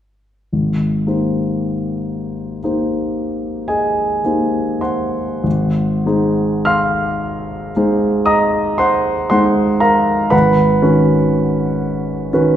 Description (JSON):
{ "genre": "classical, impressionist solo piano", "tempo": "31-40 BPM (dotted quarters)", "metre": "9/8", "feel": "rubato", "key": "Ab mixolydian", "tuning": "A4 = 440 Hz", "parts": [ { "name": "warm grand piano", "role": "solo", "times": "0.5-12.6 s", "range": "Ab1 to F6", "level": "-14 LUFS", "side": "equal", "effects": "none" } ], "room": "wet recital hall reverb, RT60 1.5 s", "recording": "recorded in a church or concert hall, faint mains hum", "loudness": "-14 LUFS", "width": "side -10 dB against mid", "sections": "0.5-5.4 A section; 5.4-12.6 B section", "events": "none", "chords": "0.5 Abmaj9; 5.4 Ab6; 10.3 Badd9/Ab" }